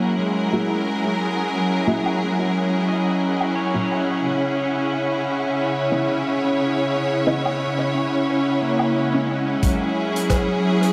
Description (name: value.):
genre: ambient dub.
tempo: 89 BPM.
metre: 4/4.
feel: swing 55% on 16ths.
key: F# mixolydian.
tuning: A4 = 440 Hz.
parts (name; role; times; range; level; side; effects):
rich symphonic string section; sustained chords; 0.0-10.9 s; C#3 to C#5; -23 LUFS; equal; none.
pedal steel guitar; arpeggios; 0.0-10.9 s; G#3 to D#5; -30 LUFS; equal; diffuse ambient delay.
wind-like tuned noise texture; texture; 0.0-10.9 s; F#5; -36 LUFS; equal; built-in reverb, analog chorus.
filtered dub chord stab; stabs; 0.5-9.3 s; A#3 to E5; -30 LUFS; equal; phaser, ensemble chorus, cassette tape, dub echo.
soft-mallet drum kit; drums; 2.1-10.9 s; hi-hat, rim click, woodblock; -33 LUFS; equal; dub echo.
electronic kick drum; drums; 9.6-10.4 s; none; -24 LUFS; equal; none.
room: wet lush hall reverb, RT60 2.8 s.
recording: dreamy mix soaked in reverb.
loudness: -21 LUFS.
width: mono.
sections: 0.0-9.6 A section; 9.6-10.9 B section.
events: none.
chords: 0.0 F#7; 4.2 C#m9; 9.6 F#7(no3).